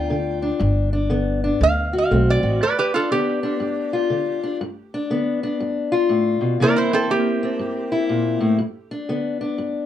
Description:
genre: acoustic country blues, solo or duo.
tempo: 120 BPM.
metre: 4/4.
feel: swing 64% on 8ths.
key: G mixolydian.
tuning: A4 = 440 Hz.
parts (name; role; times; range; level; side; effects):
lap resonator guitar; melody; 0.0-8.6 s; C4 to G5; -22 LUFS; right 3 dB; tape echo.
fingerpicked steel-string acoustic guitar; accompaniment; 0.0-9.9 s; G2 to F#4; -20 LUFS; left 2 dB; none.
upright bass; bass; 0.0-2.6 s; G1 to D2; -21 LUFS; equal; none.
room: moderate studio ambience, RT60 0.5 s.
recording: dark, warm production.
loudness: -18 LUFS.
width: side -11 dB against mid.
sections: 0.0-2.6 A section; 2.6-9.9 A section.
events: none.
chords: 0.0 G7; 1.6 D7; 2.6 G7; 6.6 C7; 8.6 G.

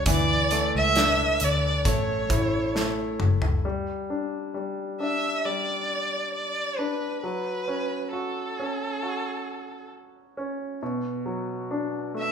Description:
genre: pop ballad.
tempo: 67 BPM.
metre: 4/4.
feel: straight.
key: unclear.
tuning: A4 = 439 Hz.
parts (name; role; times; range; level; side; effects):
warm violin; melody; 0.0-12.3 s; A4 to E5; -26 LUFS; right 1 dB; none.
clear baby grand piano; accompaniment; 0.0-12.3 s; B2 to F#4; -29 LUFS; left 1 dB; none.
vintage muted fingered electric bass; bass; 0.0-3.6 s; F#1 to D2; -28 LUFS; equal; none.
modern studio drum kit; drums; 0.1-3.6 s; hi-hat, kick drum, snare drum, toms; -26 LUFS; left 1 dB; none.
room: wet large studio reverb, RT60 1.1 s.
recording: band playing live in one room.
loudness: -24 LUFS.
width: side -7 dB against mid.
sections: 0.0-3.6 A section; 3.6-12.3 B section.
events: drum fill 2.8-3.6.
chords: 0.1 Dsus2; 1.9 A6; 3.6 G5; 7.2 F#madd11; 10.8 Bm.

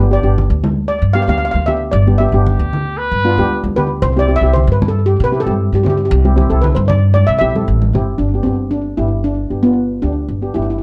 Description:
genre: calypso.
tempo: 115 BPM.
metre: 4/4.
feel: straight.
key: unclear.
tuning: A4 = 437 Hz.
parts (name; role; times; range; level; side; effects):
steel pan; melody; 0.0-10.8 s; B3 to F5; -20 LUFS; equal; slapback echo.
steel pan; accompaniment; 0.0-10.8 s; B3 to A4; -23 LUFS; equal; none.
upright bass; bass; 0.0-10.8 s; G1 to C3; -17 LUFS; equal; none.
congas; percussion; 0.4-8.1 s; none; -23 LUFS; equal; none.
warm trumpet; second line; 2.5-3.6 s; G4 to B4; -21 LUFS; equal; none.
room: light reverb.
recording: dark, warm production.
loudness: -15 LUFS.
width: mono.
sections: 0.0-8.2 A section; 8.2-10.8 B section.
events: steel pan solo 0.0-8.2.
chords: 0.0 G; 4.0 C; 8.2 G.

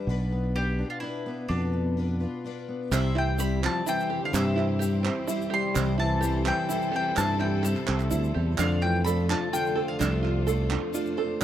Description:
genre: indie folk with a building arrangement.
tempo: 127 BPM.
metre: 3/4.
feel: straight.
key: unclear.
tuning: A4 = 441 Hz.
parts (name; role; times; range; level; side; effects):
fingerpicked steel-string acoustic guitar; accompaniment; 0.0-2.9 s; B2 to F4; -34 LUFS; left 1 dB; none.
picked twelve-string acoustic guitar; accompaniment; 0.0-11.4 s; C3 to C5; -35 LUFS; left 9 dB; none.
fingered electric bass; bass; 0.1-11.4 s; B1 to G2; -26 LUFS; equal; none.
mandolin; melody; 0.6-11.4 s; D4 to C6; -31 LUFS; left 1 dB; none.
warm French horn; second line; 2.9-11.4 s; C3 to G3; -33 LUFS; left 6 dB; none.
dark concert grand piano; accompaniment; 2.9-11.4 s; F1 to E5; -36 LUFS; right 7 dB; none.
warm studio string section; sustained chords; 2.9-11.4 s; C3 to A4; -37 LUFS; left 1 dB; none.
open-back banjo; arpeggios; 2.9-11.4 s; C4 to A4; -32 LUFS; right 7 dB; none.
group handclap; percussion; 2.9-11.4 s; none; -34 LUFS; right 8 dB; none.
tube shaker; percussion; 2.9-11.4 s; none; -39 LUFS; left 8 dB; none.
room: little or no reverb.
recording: dry, close 1970s-style studio recording.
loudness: -24 LUFS.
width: side -11 dB against mid.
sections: 0.0-2.9 A section; 2.9-11.4 B section.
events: none.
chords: 0.1 Bdim; 2.9 C; 8.6 F6.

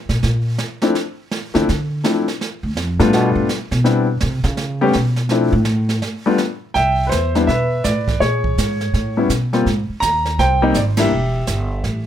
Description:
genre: jazz piano trio.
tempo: 165 BPM.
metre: 4/4.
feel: swing 63% on 8ths.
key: C major.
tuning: A4 = 440 Hz.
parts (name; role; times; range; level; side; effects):
upright bass; bass; 0.1-12.1 s; E1 to D3; -19 LUFS; right 1 dB; none.
jazz brush drum kit; drums; 0.1-12.1 s; brushed snare drum, hi-hat, kick drum, ride cymbal, snare drum; -25 LUFS; right 4 dB; none.
warm concert grand piano; melody; 0.8-12.0 s; F3 to Bb5; -17 LUFS; left 2 dB; none.
room: light reverb.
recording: none.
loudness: -16 LUFS.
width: side -10 dB against mid.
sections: 0.0-6.7 A section; 6.7-12.1 B section.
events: upright bass solo 0.0-6.7; band accent 10.9.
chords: 0.2 N.C.; 0.9 Dm9; 2.4 G9; 3.8 Cmaj7; 4.6 A7 (rootless); 5.3 Dm7; 6.0 N.C.; 6.7 Cmaj7; 8.2 Bbm7; 8.9 A9; 9.7 Abmaj9; 11.1 Em.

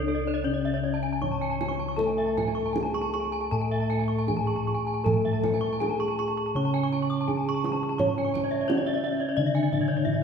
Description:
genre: Balinese gamelan.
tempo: 78-91 BPM.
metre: 4/4.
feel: straight.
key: C# pelog.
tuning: A4 = 440 Hz.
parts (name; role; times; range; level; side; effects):
gamelan-type bronze metallophone; melody; 0.0-10.2 s; C#4 to C#5; -30 LUFS; left 2 dB; none.
gamelan-type bronze metallophone; accompaniment; 0.0-10.2 s; C#3 to C#4; -32 LUFS; right 1 dB; none.
gamelan-type bronze metallophone; arpeggios; 0.0-10.2 s; C#5 to D6+35c; -33 LUFS; left 3 dB; none.
gamelan-type bossed gongs; bass; 0.0-10.2 s; C#2 to C#5; -30 LUFS; left 1 dB; none.
gamelan-type bronze metallophone; arpeggios; 0.1-10.1 s; A4 to C#6; -34 LUFS; right 5 dB; none.
kendang; percussion; 0.1-10.2 s; none; -32 LUFS; right 2 dB; none.
room: wet concert hall reverb, RT60 2.0 s.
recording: heard from further back in the room.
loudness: -24 LUFS.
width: side -6 dB against mid.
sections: 0.0-10.2 A section.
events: none.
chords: none.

